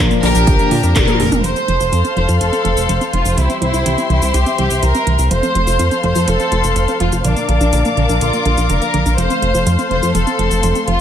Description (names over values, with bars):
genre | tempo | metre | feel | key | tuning
italo disco | 124 BPM | 4/4 | straight | F major | A4 = 440 Hz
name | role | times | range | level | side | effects
warm studio string section | sustained chords | 0.0-11.0 s | F3 to D6 | -20 LUFS | left 2 dB | none
analog pluck | arpeggios | 0.0-11.0 s | D3 to F4 | -23 LUFS | right 3 dB | chorus, ping-pong delay
mellow synth brass | stabs | 0.0-11.0 s | Bb2 to Bb4 | -25 LUFS | left 2 dB | chorus
chorused synth bass | bass | 0.0-11.0 s | F1 to Bb2 | -16 LUFS | equal | none
house drum kit | drums | 0.1-11.0 s | cabasa, handclaps, hi-hat, toms | -23 LUFS | equal | small room reverb
warm studio violin section | melody | 0.2-11.0 s | D4 to C5 | -19 LUFS | equal | ping-pong delay
electronic kick drum | drums | 0.5-1.1 s | none | -16 LUFS | equal | small room reverb
room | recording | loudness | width
light reverb | none | -12 LUFS | side -9 dB against mid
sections
0.0-1.4 A section; 1.4-11.0 B section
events
drum fill 1.0-1.4; band accent 1.0; filter sweep on analog polysynth 1.4-11.0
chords
0.0 Bb; 1.4 F; 3.4 C; 5.3 F; 7.2 Bb; 9.2 F